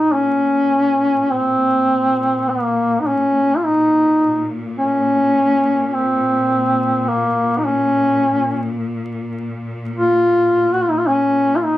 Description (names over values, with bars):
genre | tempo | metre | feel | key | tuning
caucasian folk, Caucasian lament | 52 BPM | 4/4 | rubato | Bb minor | A4 = 440 Hz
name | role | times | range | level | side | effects
warm duduk | melody | 0.0-11.8 s | Bb3 to Gb4 | -14 LUFS | equal | none
clear studio string section | drone | 0.0-11.8 s | Bb2 | -26 LUFS | left 1 dB | none
room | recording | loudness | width
moderate studio reverb, RT60 0.6 s | vinyl crackle | -15 LUFS | side -15 dB against mid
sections
0.1-11.8 A section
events
none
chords
none